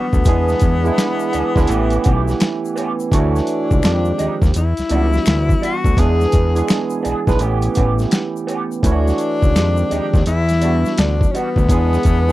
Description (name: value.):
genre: R&B, neo-soul.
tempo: 84 BPM.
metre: 4/4.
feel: swing 64% on 16ths.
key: unclear.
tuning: A4 = 440 Hz.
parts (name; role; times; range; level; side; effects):
breathy tenor saxophone; melody; 0.0-12.3 s; B3 to G#4; -22 LUFS; left 4 dB; none.
electric guitar through a small old amp; second line; 0.0-11.5 s; G3 to G#4; -25 LUFS; right 3 dB; wah.
barky tine electric piano; accompaniment; 0.0-12.3 s; Eb3 to C#5; -20 LUFS; right 4 dB; overdrive, analog chorus.
fat analog bass; bass; 0.1-12.3 s; A1 to F2; -17 LUFS; equal; none.
boom bap sampler-style drum kit; drums; 0.1-12.3 s; hi-hat, kick drum, snare drum; -17 LUFS; equal; overdrive.
egg shaker and finger snaps; percussion; 0.1-12.3 s; none; -35 LUFS; left 9 dB; none.
room: little or no reverb.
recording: dry, close 1970s-style studio recording.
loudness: -14 LUFS.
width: side -16 dB against mid.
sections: 0.0-12.3 A section.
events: none.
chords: 0.3 E7; 1.7 A9; 3.1 Dmaj9; 3.8 Fm9; 4.5 Em9; 6.0 E7; 7.4 A9; 8.8 Dmaj9; 9.5 Fm9; 10.3 Em9; 11.7 E7.